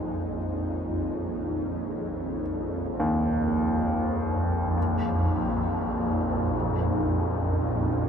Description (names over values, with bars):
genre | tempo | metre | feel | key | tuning
dark ambient drone | free time | none | none | unclear | A4 = 439 Hz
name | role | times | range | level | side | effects
dark analog pad | sustained chords | 0.0-8.1 s | Bb2 to Db5 | -32 LUFS | equal | chorus
warm grand piano | arpeggios | 0.0-8.1 s | Eb2 to Ab3 | -29 LUFS | left 1 dB | ping-pong delay
swarming drone | drone | 0.0-8.1 s | Bb1 to F2 | -28 LUFS | right 1 dB | built-in reverb, phaser
room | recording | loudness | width
wet huge ambient reverb, RT60 7.5 s | none | -25 LUFS | side -7 dB against mid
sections
0.0-8.1 A section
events
none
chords
0.0 Bbm; 4.8 Gbadd9/Bb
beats
free time